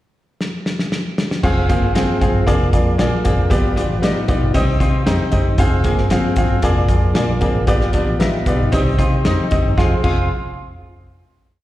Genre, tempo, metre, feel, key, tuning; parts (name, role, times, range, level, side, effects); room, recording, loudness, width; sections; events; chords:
uptempo 1960s-style soul; 115 BPM; 4/4; straight; F minor; A4 = 445 Hz
warm soul drum kit; drums; 0.4-10.2 s; crash cymbal, hi-hat, kick drum, snare drum; -19 LUFS; equal
clear upright piano; accompaniment; 1.4-10.3 s; Bb3 to Bb5; -20 LUFS; left 1 dB; slapback echo
tonewheel organ; sustained chords; 1.4-10.0 s; D3 to Ab4; -28 LUFS; right 4 dB
vintage muted fingered electric bass; bass; 1.4-10.3 s; F1 to C3; -19 LUFS; equal
electric guitar through a small old amp; riff; 1.7-10.3 s; Bb3 to F4; -26 LUFS; left 5 dB; analog chorus, slapback echo
light reverb, small room ambience; live gig heard through the venue's PA, recital hall reverb; -14 LUFS; side -15 dB against mid
0.0-1.4 pickup bar; 1.4-9.8 verse; 9.8-11.6 final chord
drum fill 0.4-1.4; upright piano fill 4.5-5.6
0.0 N.C.; 1.4 Fm; 2.5 Bb7/F; 3.5 G7; 4.5 Cm; 5.6 Fm; 6.6 Bb7/F; 7.7 G7; 8.7 Cm; 9.8 Fm